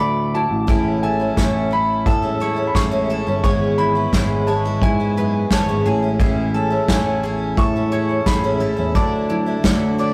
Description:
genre	indie folk with a building arrangement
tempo	87 BPM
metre	4/4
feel	straight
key	A major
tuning	A4 = 438 Hz
part	clear upright piano	melody	0.0-10.1 s	E5 to C#6	-27 LUFS	equal	none
part	fingerpicked steel-string acoustic guitar	accompaniment	0.0-10.1 s	E2 to F#4	-31 LUFS	equal	none
part	bowl-back mandolin	arpeggios	0.0-10.1 s	G#3 to D5	-28 LUFS	equal	none
part	picked electric bass	bass	0.0-10.1 s	G1 to A2	-24 LUFS	equal	none
part	picked twelve-string acoustic guitar	accompaniment	0.7-10.1 s	G#2 to E4	-26 LUFS	equal	none
part	unplugged drum kit	drums	0.7-9.8 s	kick drum, snare drum	-22 LUFS	equal	none
room	moderate stone room reverb, RT60 0.9 s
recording	rough rehearsal-room recording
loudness	-19 LUFS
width	mono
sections	0.0-10.1 A section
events	none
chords	0.0 Dadd9; 0.7 Amaj7; 3.4 E6/G#; 5.9 Amaj7; 9.0 Dadd9

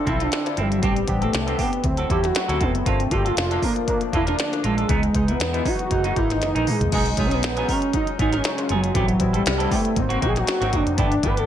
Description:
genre	polished 1980s jazz-funk pop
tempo	118 BPM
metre	4/4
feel	swing 54% on 16ths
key	unclear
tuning	A4 = 442 Hz
part	fat analog lead	melody	0.0-11.5 s	F#3 to B4	-23 LUFS	right 1 dB	chorus
part	barky tine electric piano	accompaniment	0.0-11.5 s	E3 to A4	-28 LUFS	left 2 dB	medium stereo tremolo, analog chorus
part	semi-hollow electric guitar	riff	0.1-11.5 s	E3 to Bb4	-29 LUFS	right 4 dB	wide subtle chorus
part	vintage muted fingered electric bass	bass	0.1-11.4 s	E1 to E2	-26 LUFS	equal	none
part	minimal click drum kit	drums	0.1-11.5 s	crash cymbal, hi-hat, kick drum, snare drum, toms	-25 LUFS	equal	gated reverb
room	light reverb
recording	bright 1980s-style digital production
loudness	-19 LUFS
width	side -10 dB against mid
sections	0.0-11.5 A section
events	drum fill 6.4-6.9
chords	0.0 Dm9; 0.8 Am11; 1.8 D7; 2.9 Gm9; 4.9 C#m9; 5.9 F#13; 6.9 B6; 9.0 Am7; 10.0 G#9

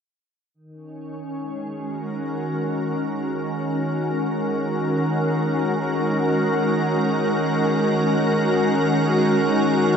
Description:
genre	ambient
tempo	free time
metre	none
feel	none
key	Eb minor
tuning	A4 = 440 Hz
part	soft additive organ-like pad	sustained chords	0.9-10.0 s	Eb3 to Bb4	-20 LUFS	equal	ensemble chorus, built-in reverb
room	wet cathedral reverb, RT60 6.2 s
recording	none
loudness	-20 LUFS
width	side -7 dB against mid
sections	0.5-10.0 A section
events	filter sweep on ambient pad 0.5-10.0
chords	0.5 Ebm

